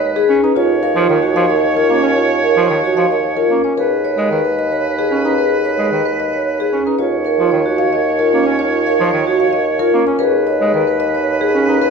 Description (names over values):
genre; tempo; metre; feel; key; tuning
classical, minimalist pattern music; 112 BPM; 3/4; straight; unclear; A4 = 440 Hz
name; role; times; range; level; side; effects
marimba with medium mallets; melody; 0.0-11.9 s; Ab4 to F5; -18 LUFS; left 9 dB; none
bright oboe; second line; 0.0-11.9 s; Cb5 to Db5; -22 LUFS; right 3 dB; none
vibraphone with soft mallets; arpeggios; 0.0-11.9 s; Db4 to Db5; -18 LUFS; right 8 dB; none
mellow bassoon; bass; 0.0-11.9 s; Eb2; -20 LUFS; right 1 dB; none
bright bass clarinet; accompaniment; 0.3-11.8 s; Eb3 to Eb4; -22 LUFS; equal; none
room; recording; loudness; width
wet recital hall reverb, RT60 1.4 s; minimal, uncompressed stereo recording; -13 LUFS; side -5 dB against mid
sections
0.0-11.9 A section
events
none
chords
0.0 Abm/Eb; 0.6 Eb7(no3); 3.8 Abm/Eb; 7.0 Eb7(no3); 10.2 Abm/Eb